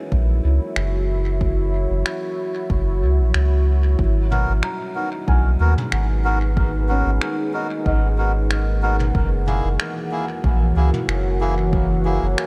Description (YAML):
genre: ambient dub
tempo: 93 BPM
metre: 4/4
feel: swing 54% on 16ths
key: unclear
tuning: A4 = 440 Hz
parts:
  - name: deep dark ambient pad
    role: sustained chords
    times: 0.0-12.5 s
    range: E3 to F#5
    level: -28 LUFS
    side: equal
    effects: chorus, built-in reverb
  - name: felt-muted upright piano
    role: arpeggios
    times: 0.0-10.4 s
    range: C#4 to A#5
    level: -36 LUFS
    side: equal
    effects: subtle chorus, dub echo
  - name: soft dub sub bass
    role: bass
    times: 0.1-12.4 s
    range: F#1 to D#2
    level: -21 LUFS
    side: equal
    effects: none
  - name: electronic kick drum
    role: drums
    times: 0.1-11.9 s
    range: none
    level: -24 LUFS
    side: equal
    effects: overdrive
  - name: jazz brush drum kit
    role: drums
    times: 0.8-12.5 s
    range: finger snaps, toms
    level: -31 LUFS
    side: equal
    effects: dub echo
  - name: melodica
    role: stabs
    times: 4.3-12.3 s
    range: A#3 to A#4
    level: -29 LUFS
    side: equal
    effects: dub echo
room: light reverb, studio ambience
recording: none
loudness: -20 LUFS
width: mono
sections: 0.0-12.5 A section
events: none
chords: 0.0 F#7; 4.0 G#m9; 9.2 F#7